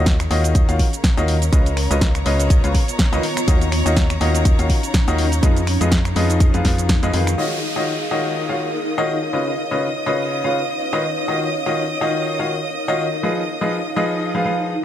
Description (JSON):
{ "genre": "piano house", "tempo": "123 BPM", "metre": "4/4", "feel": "swing 56% on 16ths", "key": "Eb minor", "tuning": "A4 = 442 Hz", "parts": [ { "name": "clear studio violin section", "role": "sustained chords", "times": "0.0-14.8 s", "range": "Db5 to Eb6", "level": "-28 LUFS", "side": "equal", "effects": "sidechain pumping" }, { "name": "bright upright piano", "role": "riff", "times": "0.0-14.7 s", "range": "Db3 to F5", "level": "-22 LUFS", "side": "left 1 dB", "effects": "sidechain pumping, ping-pong delay" }, { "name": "organ-like FM bass", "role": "bass", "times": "0.0-7.4 s", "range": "Db2 to F2", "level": "-20 LUFS", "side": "equal", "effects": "sidechain pumping" }, { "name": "granular cloud pad", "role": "texture", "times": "0.0-14.8 s", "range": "Cb4 to F5", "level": "-26 LUFS", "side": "equal", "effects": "built-in reverb, sidechain pumping" }, { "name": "electronic kick drum", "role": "drums", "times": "0.1-7.0 s", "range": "none", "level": "-16 LUFS", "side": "equal", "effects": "none" }, { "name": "house drum kit", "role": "drums", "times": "0.1-7.4 s", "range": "cabasa, finger snaps, hi-hat, snare drum", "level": "-24 LUFS", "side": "equal", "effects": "low-pass filter on hats, low-pass filter on snare, low-pass filter on perc" }, { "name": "downlifter", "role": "sound effects", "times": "7.4-11.3 s", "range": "none", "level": "-31 LUFS", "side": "equal", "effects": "none" } ], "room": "light reverb, digital ambience", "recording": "none", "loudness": "-16 LUFS", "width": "side -11 dB against mid", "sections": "0.0-7.4 A section; 7.4-14.8 B section", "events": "band accent 6.9", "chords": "0.0 Ebm9; 1.5 Db9; 3.2 Ebm9; 5.4 Fm7b5; 7.4 Ebm9; 9.3 Db9; 11.0 Ebm9; 13.2 Fm7b5" }